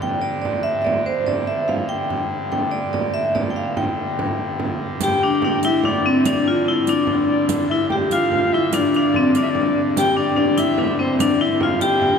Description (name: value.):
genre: medieval dance.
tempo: 97 BPM (dotted quarters).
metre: 6/8.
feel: straight.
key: unclear.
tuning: A4 = 439 Hz.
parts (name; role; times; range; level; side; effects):
vibraphone with hard mallets; melody; 0.0-12.2 s; C4 to G5; -19 LUFS; left 1 dB; none.
pipe organ, trumpet; drone; 0.0-12.2 s; G2 to D3; -29 LUFS; equal; none.
frame drum; percussion; 0.0-12.2 s; none; -26 LUFS; right 3 dB; none.
reedy soprano recorder; second line; 5.0-12.2 s; C5 to G5; -23 LUFS; left 2 dB; none.
riq; percussion; 5.0-12.0 s; none; -32 LUFS; right 4 dB; none.
room: wet cathedral reverb, RT60 5.4 s.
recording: none.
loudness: -17 LUFS.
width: side -6 dB against mid.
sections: 0.0-5.0 A section; 5.0-12.2 A section.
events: none.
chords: none.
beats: | 0.04 0.66 | 1.28 1.90 | 2.52 3.15 | 3.77 4.39 | 5.01 5.63 | 6.25 6.87 | 7.49 8.10 | 8.72 9.34 | 9.96 10.58 | 11.19 11.81.